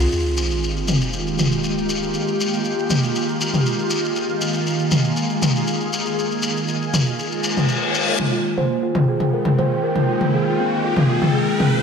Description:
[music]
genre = afro house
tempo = 119 BPM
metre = 4/4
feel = straight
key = F minor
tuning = A4 = 441 Hz
[part]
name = ethereal airy pad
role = sustained chords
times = 0.0-11.8 s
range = Eb3 to G5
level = -22 LUFS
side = right 1 dB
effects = ensemble chorus, built-in reverb, phaser
[part]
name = buzzing kalimba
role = arpeggios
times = 0.0-0.1, 8.3-11.7 s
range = C4 to C5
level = -24 LUFS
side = equal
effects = low-pass filter, dub echo
[part]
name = shekere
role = percussion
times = 0.0-8.2 s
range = none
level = -26 LUFS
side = left 4 dB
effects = none
[part]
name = sub drop, reverse cymbal and riser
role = sound effects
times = 0.1-2.1, 7.4-11.8 s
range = none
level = -26 LUFS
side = left 1 dB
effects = none
[part]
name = electronic toms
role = drums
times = 0.9-11.7 s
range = none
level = -20 LUFS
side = left 1 dB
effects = soft clipping on snare, low-pass filter on snare, low-pass filter on toms, low-pass filter on room
[sound]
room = moderate lush hall reverb, RT60 2.2 s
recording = dense, heavily limited modern master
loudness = -18 LUFS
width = side -6 dB against mid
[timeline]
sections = 0.1-8.2 A section; 8.2-11.8 B section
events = impact 0.1-2.1; reverse cymbal 7.4-8.2; build-up 8.2-11.8; drum fill 8.2-11.8; riser 8.2-11.8; filter sweep on kalimba 8.2-11.8; filter sweep on ambient pad 8.2-11.8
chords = 0.1 Fm11

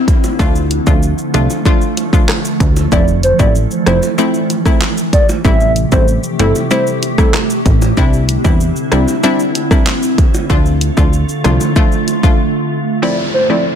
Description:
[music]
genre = dancehall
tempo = 95 BPM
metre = 4/4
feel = straight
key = D minor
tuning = A4 = 438 Hz
[part]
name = glassy FM pad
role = sustained chords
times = 0.0-13.8 s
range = C3 to G4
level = -18 LUFS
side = right 1 dB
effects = ensemble chorus, built-in reverb, sidechain pumping
[part]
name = pop drum kit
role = drums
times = 0.1-12.4 s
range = handclaps, hi-hat, kick drum, rim click, shaker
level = -13 LUFS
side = equal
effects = soft clipping on snare
[part]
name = bongos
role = percussion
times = 0.1-12.2 s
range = none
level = -26 LUFS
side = right 4 dB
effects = none
[part]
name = hollow square pluck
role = accompaniment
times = 0.4-13.6 s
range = F3 to F4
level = -17 LUFS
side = left 2 dB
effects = chorus, sidechain pumping
[part]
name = plucky analog bass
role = bass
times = 0.4-11.6 s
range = F1 to E2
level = -15 LUFS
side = equal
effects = none
[part]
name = hollow clarinet-like synth lead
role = melody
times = 2.9-7.3, 13.0-13.6 s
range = A4 to E5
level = -17 LUFS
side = equal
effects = chorus, ping-pong delay
[part]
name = downlifter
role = sound effects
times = 13.0-13.8 s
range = none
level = -21 LUFS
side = right 1 dB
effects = none
[sound]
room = digital ambience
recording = dense, heavily limited modern master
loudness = -10 LUFS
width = side -8 dB against mid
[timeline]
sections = 0.0-13.0 A section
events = break 12.4-13.0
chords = 0.4 Dm; 2.9 Fmaj7; 5.4 Am7; 8.0 Cadd9; 10.5 Dm; 13.0 Fmaj7

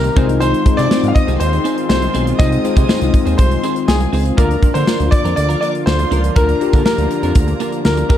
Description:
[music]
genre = 1980s-style pop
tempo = 121 BPM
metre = 4/4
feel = straight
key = unclear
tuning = A4 = 440 Hz
[part]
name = bright concert grand piano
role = melody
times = 0.0-8.2 s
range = Ab4 to F5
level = -21 LUFS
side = left 1 dB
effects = none
[part]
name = warm studio violin section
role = second line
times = 0.0-8.2 s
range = Ab5 to F6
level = -30 LUFS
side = left 2 dB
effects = tape echo
[part]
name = bell-like tine electric piano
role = accompaniment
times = 0.0-8.2 s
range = Ab3 to C5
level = -20 LUFS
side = left 5 dB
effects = analog chorus
[part]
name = sweeping resonant pad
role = sustained chords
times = 0.0-8.2 s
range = D3 to G4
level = -26 LUFS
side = equal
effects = chorus
[part]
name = clean electric guitar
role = riff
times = 0.0-8.2 s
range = Bb3 to C5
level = -26 LUFS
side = right 8 dB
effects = analog chorus, tape echo
[part]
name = funky polysynth comp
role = stabs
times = 0.0-8.1 s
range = Eb3 to D5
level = -27 LUFS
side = left 1 dB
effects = none
[part]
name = fat analog bass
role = bass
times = 0.0-8.2 s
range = Cb2 to D3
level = -17 LUFS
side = equal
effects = none
[part]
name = modern studio drum kit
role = drums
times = 0.0-8.2 s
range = hi-hat, kick drum, snare drum, tambourine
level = -16 LUFS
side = equal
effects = none
[sound]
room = light reverb, small room reverb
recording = dark, warm production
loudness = -12 LUFS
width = side -11 dB against mid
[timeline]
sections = 0.0-8.2 A section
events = none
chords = 0.2 Fm7; 4.4 Bb

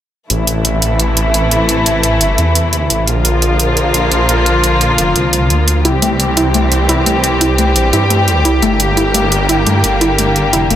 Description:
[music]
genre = dark technical drum and bass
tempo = 173 BPM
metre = 4/4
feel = straight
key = A phrygian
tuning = A4 = 440 Hz
[part]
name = warm studio string section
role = sustained chords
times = 0.3-10.8 s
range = C3 to G4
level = -14 LUFS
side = left 1 dB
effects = none
[part]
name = phased detuned saw bass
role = bass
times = 0.3-10.8 s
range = F1 to G2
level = -15 LUFS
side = equal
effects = phaser
[part]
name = electronic hi-hat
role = drums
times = 0.3-10.8 s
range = none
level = -16 LUFS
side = right 1 dB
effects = overdrive
[part]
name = warbly dusty pluck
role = arpeggios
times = 5.8-10.8 s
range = A3 to E4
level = -17 LUFS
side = equal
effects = chorus, digital delay
[sound]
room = light reverb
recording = none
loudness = -10 LUFS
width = side -11 dB against mid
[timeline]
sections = 0.3-10.8 A section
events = none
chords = 0.3 Am; 3.1 Bb; 5.8 C; 8.6 Gm

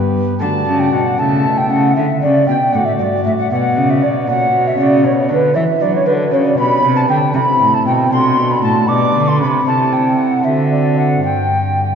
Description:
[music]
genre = classical, baroque-style sonata movement with continuo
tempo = 78 BPM (dotted quarters)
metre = 6/8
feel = straight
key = D major, G major from 6.6 s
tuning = A4 = 439 Hz
[part]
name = chamber organ, principal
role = accompaniment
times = 0.0-11.9 s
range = G2 to E5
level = -18 LUFS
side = left 1 dB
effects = none
[part]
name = warm cello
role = bass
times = 0.0-11.9 s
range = G2 to F#3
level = -17 LUFS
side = equal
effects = none
[part]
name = mellow hollow tenor recorder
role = melody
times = 0.4-11.9 s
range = B4 to C6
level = -21 LUFS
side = left 4 dB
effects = none
[part]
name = baroque flute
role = second line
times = 0.4-11.9 s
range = B4 to D6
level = -16 LUFS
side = right 3 dB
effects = none
[sound]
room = wet church reverb, RT60 3.1 s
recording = dark, warm production, nothing above 7.5 kHz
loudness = -12 LUFS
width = side -7 dB against mid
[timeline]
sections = 0.4-11.9 A section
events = none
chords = 0.4 D; 1.2 A; 2.0 D; 3.5 Bm; 4.3 F#/A#; 5.0 Bm; 6.6 G/B; 7.3 Am; 8.1 D7; 8.9 G/B; 9.7 Am/C; 10.4 D7; 11.2 N.C.

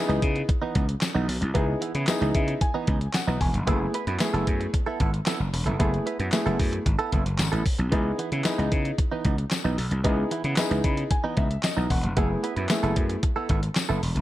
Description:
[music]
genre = early-eighties boogie funk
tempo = 113 BPM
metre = 4/4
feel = straight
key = C# minor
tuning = A4 = 439 Hz
[part]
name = warm concert grand piano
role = accompaniment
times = 0.0-13.2 s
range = A3 to B5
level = -29 LUFS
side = left 1 dB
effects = none
[part]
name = direct-recorded clean electric guitar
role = riff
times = 0.1-14.2 s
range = E3 to B4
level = -32 LUFS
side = right 4 dB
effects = analog chorus
[part]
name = gritty slap bass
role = bass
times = 0.1-14.2 s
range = E1 to C#3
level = -26 LUFS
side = equal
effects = overdrive
[part]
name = clean 12-bit digital drum machine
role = drums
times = 0.1-14.2 s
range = handclaps, hi-hat, kick drum, snare drum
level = -26 LUFS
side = equal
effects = none
[part]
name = tambourine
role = percussion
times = 1.0-13.9 s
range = none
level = -37 LUFS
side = left 16 dB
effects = none
[sound]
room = digital ambience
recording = dark, warm production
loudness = -22 LUFS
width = side -14 dB against mid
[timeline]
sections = 0.0-14.2 A section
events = grand piano fill 2.1-3.7, 10.6-12.2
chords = 0.0 C#m9; 3.7 F#m11; 7.9 C#m9; 12.2 F#m11

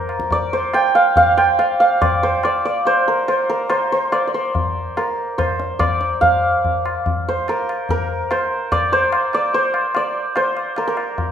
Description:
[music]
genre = indian classical, Hindustani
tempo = 143 BPM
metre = 4/4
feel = straight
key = unclear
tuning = A4 = 442 Hz
[part]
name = santur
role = melody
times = 0.0-11.3 s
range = Bb4 to G5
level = -16 LUFS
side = right 1 dB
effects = none
[part]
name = tabla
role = percussion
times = 0.1-11.3 s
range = none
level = -24 LUFS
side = left 2 dB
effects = none
[sound]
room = wet large studio reverb, RT60 1.2 s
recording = band playing live in one room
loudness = -16 LUFS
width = side -8 dB against mid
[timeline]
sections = 0.0-11.3 A section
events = speeding up 0.0-11.3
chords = none

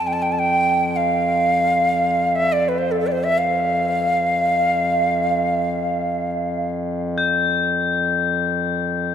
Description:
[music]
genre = world meditative, free-time meditation music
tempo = free time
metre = none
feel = none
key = F major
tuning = A4 = 439 Hz
[part]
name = breathy Native American-style cedar flute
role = melody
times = 0.0-6.7 s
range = A4 to A5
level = -19 LUFS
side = right 1 dB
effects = ping-pong delay
[part]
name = pedal harmonium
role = drone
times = 0.0-9.1 s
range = F2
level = -24 LUFS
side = left 1 dB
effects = none
[part]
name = crotales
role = texture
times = 0.0-9.1 s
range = C6 to G6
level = -20 LUFS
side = left 8 dB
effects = stereo widening
[sound]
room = wet cathedral reverb, RT60 4.9 s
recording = none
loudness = -17 LUFS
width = side -8 dB against mid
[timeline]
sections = 0.0-9.1 A section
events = none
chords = none

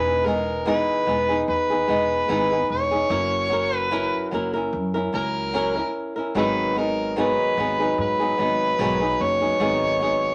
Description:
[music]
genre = acoustic pop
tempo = 74 BPM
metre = 4/4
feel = swing 55% on 16ths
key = G# minor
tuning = A4 = 440 Hz
[part]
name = overdriven harmonica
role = melody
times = 0.0-10.3 s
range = E4 to C#5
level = -25 LUFS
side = equal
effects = none
[part]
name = flamenco guitar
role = accompaniment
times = 0.0-10.3 s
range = G#2 to A#4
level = -26 LUFS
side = equal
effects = none
[part]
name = upright bass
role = bass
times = 0.0-10.3 s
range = E1 to G#2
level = -33 LUFS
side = equal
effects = none
[sound]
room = moderate studio reverb, RT60 0.5 s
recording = none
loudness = -23 LUFS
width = mono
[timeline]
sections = 0.0-10.3 A section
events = none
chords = 0.0 Emaj7; 3.1 F#7; 6.4 G#m7

